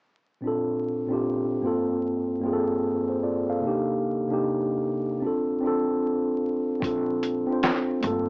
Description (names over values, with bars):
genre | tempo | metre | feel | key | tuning
lo-fi hip hop | 75 BPM | 4/4 | swing 65% on 16ths | Bb major | A4 = 440 Hz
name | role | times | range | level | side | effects
mellow tine electric piano | accompaniment | 0.4-8.3 s | G2 to F5 | -23 LUFS | equal | medium stereo tremolo, cassette tape, plate reverb
upright bass | bass | 6.8-8.3 s | G1 to Bb1 | -36 LUFS | equal | none
lo-fi sampler-style drum kit | drums | 6.8-8.3 s | handclaps, hi-hat, kick drum, snare drum | -26 LUFS | equal | vintage 12-bit sampler grit, cassette tape
room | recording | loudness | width
moderate booth ambience, RT60 0.3 s | home recording on cassette, vinyl crackle, small speaker sound | -23 LUFS | side -36 dB against mid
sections
0.4-8.3 A section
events
none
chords
0.4 Bbmaj9; 1.6 Gm11; 3.6 Cm7; 5.2 Dm7; 6.8 Bbmaj9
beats
| 0.42 1.22 2.02 2.82 | 3.62 4.42 5.22 6.02 | 6.82 7.62